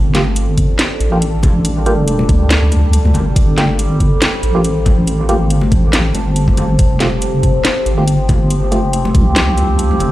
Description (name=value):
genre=deep dubstep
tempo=140 BPM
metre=4/4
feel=swing 54% on 16ths, half-time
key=unclear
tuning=A4 = 440 Hz
part: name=overtone-sweeping drone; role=sustained chords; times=0.0-10.1 s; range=F3 to A4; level=-20 LUFS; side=equal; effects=chorus, built-in reverb
part: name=deep soft wobble bass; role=bass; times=0.0-10.1 s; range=F1 to D2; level=-14 LUFS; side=equal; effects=chorus
part: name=percussive organ stab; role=stabs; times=0.1-8.8 s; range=A3 to G4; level=-23 LUFS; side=right 1 dB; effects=lush chorus, dub echo
part: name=garage drum kit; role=drums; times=0.1-10.1 s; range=hi-hat, snare drum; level=-19 LUFS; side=equal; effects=none
part: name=congas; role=percussion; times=0.1-10.1 s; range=none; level=-22 LUFS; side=left 2 dB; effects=dub echo
part: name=electronic kick drum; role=drums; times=0.6-9.2 s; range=none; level=-12 LUFS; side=equal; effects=none
room=little or no reverb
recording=played on a big sound system in a bare room, large studio reverb, lossy compression artefacts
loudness=-11 LUFS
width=side -15 dB against mid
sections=0.0-10.1 A section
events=none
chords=0.0 G5; 6.8 Fadd9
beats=0.36 0.79 1.22 | 1.65 2.08 2.50 2.93 | 3.36 3.79 4.22 4.65 | 5.08 5.50 5.93 6.36 | 6.79 7.22 7.65 8.07 | 8.50 8.93 9.36 9.79